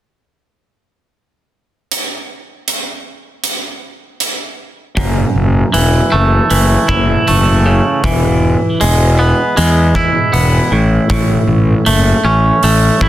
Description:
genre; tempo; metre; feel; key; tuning
quiet-loud alternative rock; 78 BPM; 4/4; straight; F# minor; A4 = 441 Hz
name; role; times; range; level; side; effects
huge arena drum kit; drums; 1.9-13.1 s; hi-hat, kick drum; -19 LUFS; right 1 dB; soft clipping on kick
twangy electric guitar; arpeggios; 5.0-13.1 s; F#2 to E4; -14 LUFS; right 1 dB; none
fuzz fingered electric bass; bass; 5.0-13.1 s; E1 to E2; -13 LUFS; equal; overdrive
room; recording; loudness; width
little or no reverb; dense, heavily limited modern master; -10 LUFS; side -13 dB against mid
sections
1.9-5.0 A section; 5.0-13.1 B section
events
none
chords
1.9 N.C.; 5.0 F#m7; 8.0 E; 10.7 A

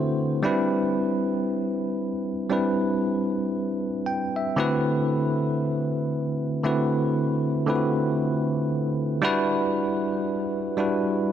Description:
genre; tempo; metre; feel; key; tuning
R&B; 58 BPM; 4/4; swing 58% on 16ths; unclear; A4 = 440 Hz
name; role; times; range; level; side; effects
bell-like tine electric piano; solo; 0.0-11.3 s; D3 to G5; -22 LUFS; equal; medium stereo tremolo
room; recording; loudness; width
moderate lush hall reverb, RT60 3.1 s; none; -22 LUFS; side -10 dB against mid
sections
0.0-11.3 A section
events
tine electric piano fill 3.5-5.1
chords
0.4 Cmaj9; 4.6 D13; 9.2 Em7

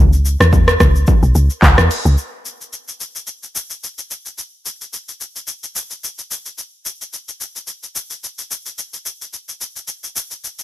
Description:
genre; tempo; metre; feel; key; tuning
amapiano; 109 BPM; 4/4; swing 55% on 16ths; unclear; A4 = 440 Hz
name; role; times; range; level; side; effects
deep log drum bass; bass; 0.0-2.2 s; B1 to E2; -12 LUFS; equal; none
deep house drum kit; drums; 0.1-10.6 s; handclaps, hi-hat, kick drum, rim click, shaker; -17 LUFS; equal; none
room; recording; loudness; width
little or no reverb; none; -16 LUFS; side -15 dB against mid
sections
0.0-2.2 A section; 2.2-10.6 B section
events
drop 0.0-2.2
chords
none

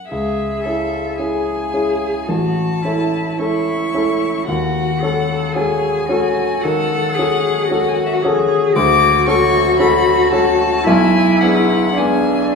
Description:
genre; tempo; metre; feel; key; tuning
classical, slow romantic movement for piano trio; 55 BPM; 4/4; rubato; unclear; A4 = 439 Hz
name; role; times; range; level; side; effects
rich violin; melody; 0.0-12.5 s; E5 to D6; -20 LUFS; left 7 dB; none
warm grand piano; accompaniment; 0.0-12.6 s; A1 to A4; -17 LUFS; left 2 dB; none
rich cello; second line; 0.1-12.6 s; D4 to A4; -19 LUFS; right 3 dB; none
room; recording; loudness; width
wet recital hall reverb, RT60 1.6 s; heard from further back in the room; -14 LUFS; side -4 dB against mid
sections
0.1-12.6 A section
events
none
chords
0.1 C#m; 2.3 A; 4.5 D#m7b5; 8.7 Dmaj7; 10.9 G#dim/B

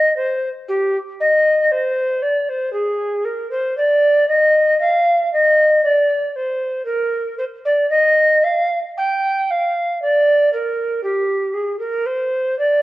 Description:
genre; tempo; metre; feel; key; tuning
classical, baroque-style fantasia for unaccompanied recorder; 58 BPM; 4/4; rubato; Eb major; A4 = 436 Hz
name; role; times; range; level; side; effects
mellow tenor recorder; solo; 0.0-12.8 s; G4 to G5; -15 LUFS; equal; none
room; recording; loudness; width
moderate recital hall reverb, RT60 1.4 s; worn, warbling old tape, cassette tape, warbly pitch drift; -15 LUFS; side -17 dB against mid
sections
0.0-12.8 A section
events
none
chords
none

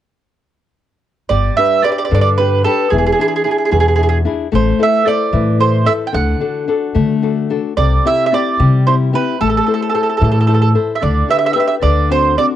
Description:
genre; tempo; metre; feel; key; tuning
italian folk, Italian serenade; 74 BPM (dotted quarters); 6/8; straight; G major; A4 = 440 Hz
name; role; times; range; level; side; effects
mandolin; melody; 1.3-12.5 s; G#4 to G5; -15 LUFS; right 5 dB; cassette tape, plate reverb
nylon-string guitar; accompaniment; 1.3-12.6 s; B2 to C5; -18 LUFS; left 7 dB; cassette tape, plate reverb
upright bass; bass; 1.3-12.4 s; E1 to D3; -15 LUFS; equal; none
room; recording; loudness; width
moderate booth ambience, RT60 0.3 s; home recording on cassette; -12 LUFS; side -11 dB against mid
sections
1.3-12.6 A section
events
none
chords
1.3 G; 2.9 E7; 4.5 Am; 6.1 D; 7.8 C; 9.4 Am; 11.0 G/D; 11.8 D7

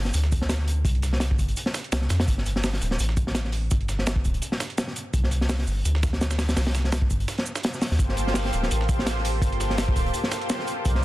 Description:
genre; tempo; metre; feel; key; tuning
drum and bass, jungle; 168 BPM; 4/4; swing 54% on 16ths; G minor; A4 = 441 Hz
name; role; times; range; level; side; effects
soft dub sub bass; bass; 0.0-11.0 s; D1 to F2; -25 LUFS; equal; tube saturation
crunchy breakbeat drum kit; drums; 0.0-11.0 s; hi-hat, kick drum, snare drum; -25 LUFS; equal; none
dusty soul sampler-style drum kit; drums; 0.1-10.9 s; hi-hat, shaker, snare drum; -34 LUFS; right 4 dB; high-pass filter on perc, high-pass filter on snare, high-pass filter on hats
lush unison pad; sustained chords; 8.0-11.0 s; Bb3 to F5; -28 LUFS; equal; chorus
room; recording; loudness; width
small room ambience; dense, heavily limited modern master; -22 LUFS; side -16 dB against mid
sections
0.0-11.0 A section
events
none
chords
0.0 Csus2; 2.3 Gsus2; 5.1 Csus2; 8.0 Gm11

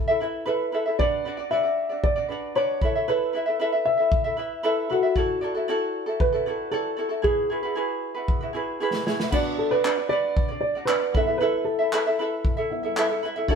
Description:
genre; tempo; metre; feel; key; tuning
acoustic pop; 115 BPM; 4/4; straight; unclear; A4 = 440 Hz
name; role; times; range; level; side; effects
dark upright piano; melody; 0.0-12.1 s; F#4 to E5; -25 LUFS; equal; none
ukulele; accompaniment; 0.0-13.6 s; D4 to E5; -26 LUFS; right 1 dB; none
natural country drum kit; drums; 1.0-13.6 s; crash cymbal, handclaps, kick drum, snare drum; -26 LUFS; equal; none
felt-muted upright piano; accompaniment; 9.3-13.6 s; B3 to E5; -33 LUFS; left 2 dB; none
room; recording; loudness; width
moderate stone room reverb, RT60 1.1 s; band playing live in one room; -22 LUFS; side -6 dB against mid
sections
0.0-9.3 A section; 9.3-13.6 B section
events
drum fill 8.3-9.3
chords
0.0 Asus2; 1.0 Bm; 2.8 Asus2; 5.2 Dadd9; 7.2 Eadd9; 9.3 Bm; 11.1 Asus2

